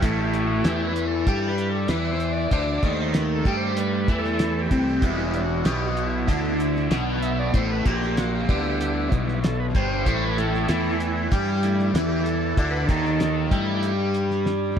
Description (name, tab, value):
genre	psychedelic rock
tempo	96 BPM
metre	4/4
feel	straight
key	unclear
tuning	A4 = 440 Hz
part	combo organ	sustained chords	0.0-13.9 s	E3 to E5	-29 LUFS	right 3 dB	wide subtle chorus
part	crunchy overdriven guitar	riff	0.0-14.8 s	E2 to G4	-24 LUFS	left 1 dB	phaser, dub echo
part	fuzz fingered electric bass	bass	0.0-14.8 s	E1 to G2	-27 LUFS	equal	overdrive
part	cloth-damped thuddy drum kit	drums	0.0-14.8 s	hi-hat, kick drum, snare drum, toms	-25 LUFS	equal	dub echo
room	light reverb, small room ambience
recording	echo-heavy mix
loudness	-21 LUFS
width	side -8 dB against mid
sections	0.0-14.8 A section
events	transistor combo organ solo 0.0-14.8; drum fill 14.4-14.8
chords	0.0 A5; 5.0 Em; 10.1 A5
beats	| 0.03 0.65 1.27 1.90 | 2.52 3.15 3.77 4.40 | 5.03 5.65 6.28 6.91 | 7.54 8.17 8.80 9.43 | 10.06 10.69 11.32 11.95 | 12.58 13.20 13.83 14.45